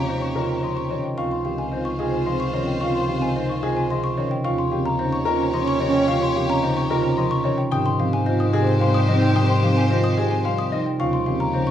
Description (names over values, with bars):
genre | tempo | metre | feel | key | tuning
classical, minimalist pattern music | 110 BPM | 3/4 | straight | Db lydian | A4 = 439 Hz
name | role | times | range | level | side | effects
mellow wooden-headed alto flute | second line | 0.0-11.7 s | C4 to Db4 | -29 LUFS | right 2 dB | none
concert harp | accompaniment | 0.0-11.7 s | C3 to G3 | -25 LUFS | equal | none
rich chamber violin section | sustained chords | 0.0-11.7 s | F4 to Db5 | -31 LUFS | left 3 dB | none
xylophone with soft rubber mallets | arpeggios | 0.0-11.7 s | Eb5 to Eb6 | -28 LUFS | left 3 dB | none
dark bass clarinet | bass | 0.0-11.7 s | Db2 to Ab2 | -26 LUFS | left 1 dB | none
dark grand piano | melody | 0.1-11.7 s | G4 to G5 | -29 LUFS | left 6 dB | none
marimba with soft mallets | arpeggios | 0.1-11.7 s | C4 to C5 | -26 LUFS | right 6 dB | none
room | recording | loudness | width
wet large studio reverb, RT60 0.9 s | heard from further back in the room | -19 LUFS | side -10 dB against mid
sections
0.0-11.7 A section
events
none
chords
0.0 Eb9; 1.2 Dbmaj9; 4.5 Eb9; 7.7 Abmaj7; 11.0 Eb9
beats
0.09 0.63 | 1.18 1.72 2.27 | 2.81 3.36 3.90 | 4.45 5.00 5.54 | 6.09 6.63 7.18 | 7.72 8.27 8.81 | 9.36 9.90 10.45 | 11.00 11.54